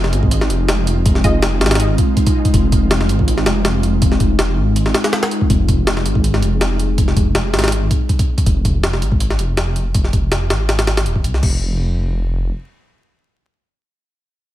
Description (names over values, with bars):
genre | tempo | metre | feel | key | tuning
drum and bass, jungle | 162 BPM | 4/4 | swing 53% on 16ths | unclear | A4 = 440 Hz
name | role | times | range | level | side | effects
ethereal airy pad | sustained chords | 0.0-8.4 s | Ab3 to Ab4 | -22 LUFS | equal | ensemble chorus, built-in reverb
detuned saw bass | bass | 0.0-12.5 s | Eb1 to C2 | -17 LUFS | equal | none
jungle sampler-style drum kit | drums | 0.0-11.5 s | crash cymbal, hi-hat, kick drum, snare drum | -16 LUFS | equal | none
filtered dub chord stab | stabs | 1.2-1.4 s | Ab3 to Eb5 | -27 LUFS | equal | chorus, dub echo
room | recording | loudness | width
digital ambience | vinyl crackle | -14 LUFS | side -14 dB against mid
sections
0.0-11.4 A section; 11.4-14.4 B section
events
filter sweep on detuned saw bass 0.0-11.4; filter sweep on ambient pad 0.0-8.5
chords
0.0 Fm7; 5.5 Ab/F; 11.4 N.C.